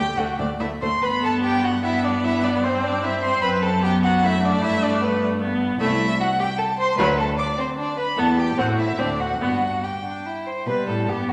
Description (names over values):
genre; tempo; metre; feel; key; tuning
quick classical-period movement for string quartet; 150 BPM; 3/4; rubato; G major; A4 = 440 Hz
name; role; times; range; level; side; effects
rich violin; melody; 0.0-11.3 s; F#4 to D6; -27 LUFS; equal; none
rich violin; second line; 0.0-11.3 s; B3 to D5; -29 LUFS; equal; none
rich viola; accompaniment; 0.0-11.3 s; F#3 to C4; -27 LUFS; equal; none
warm cello; bass; 0.0-11.3 s; C2 to B2; -28 LUFS; equal; none
room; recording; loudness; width
wet recital hall reverb, RT60 1.7 s; none; -22 LUFS; mono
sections
0.0-1.0 A section; 1.0-10.7 B section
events
none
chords
0.0 D5; 1.0 G; 2.2 C5/G; 3.4 Gmaj13/F#; 4.6 G; 5.8 Am/C; 7.0 D; 8.2 Em; 8.6 Am; 9.0 D7; 9.4 G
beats
0.17 0.60 | 1.02 1.43 1.83 | 2.23 2.63 3.02 | 3.42 3.83 4.22 | 4.62 5.02 5.41 | 5.80 6.19 6.58 | 6.98 7.38 7.78 | 8.17 8.57 8.98 | 9.40 9.82 10.24 | 10.66 11.07